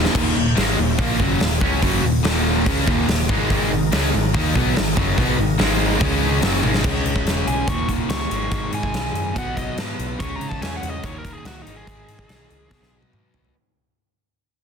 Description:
hard rock; 143 BPM; 4/4; straight; Eb minor; A4 = 440 Hz
overdriven tonewheel organ; sustained chords; 0.0-0.1, 3.5-6.8 s; Ab3 to Eb5; -33 LUFS; equal
crunchy overdriven guitar; riff; 0.0-13.5 s; Eb2 to Eb4; -25 LUFS; right 10 dB
overdriven electric guitar; riff; 0.0-13.5 s; Eb2 to Eb4; -26 LUFS; left 12 dB
tight distorted guitar; riff; 0.0-6.8 s; Eb2 to Eb4; -26 LUFS; equal; distortion
picked electric bass; bass; 0.0-13.5 s; Eb1 to Db3; -25 LUFS; equal
big rock drum kit; drums; 0.1-13.5 s; crash cymbal, hi-hat, kick drum, snare drum, toms; -22 LUFS; left 1 dB; soft clipping on kick
biting lead guitar; melody; 7.5-13.0 s; Eb4 to Db6; -30 LUFS; equal; overdrive, slapback echo
light reverb, small room ambience; dense, heavily limited modern master; -18 LUFS; side -6 dB against mid
0.2-6.8 A section; 6.8-13.5 B section
drum fill 0.0, 6.6, 12.7-13.5; fade-out 6.8-13.5; lead electric guitar solo 6.8-13.5
0.2 Ebm; 3.5 Ab5; 6.0 Db5; 6.4 Ab5; 6.8 Dbm; 7.7 Eb5; 8.3 Abm; 9.4 B5; 10.2 Dbm; 11.0 Eb5; 11.7 Abm; 12.7 B5

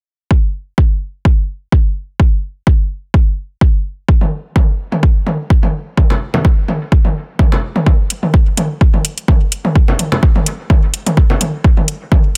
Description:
techno; 127 BPM; 4/4; swing 54% on 16ths
electronic kick drum; drums; 0.3-12.2 s; -13 LUFS; equal; overdrive
electronic toms and congas; percussion; 4.2-12.2 s; -21 LUFS; equal; sidechain pumping on toms, sidechain pumping on perc, dub echo
electronic hi-hat; drums; 8.1-12.0 s; -20 LUFS; equal; overdrive
digital ambience; -14 LUFS; mono
0.3-7.9 A section; 7.9-12.4 B section

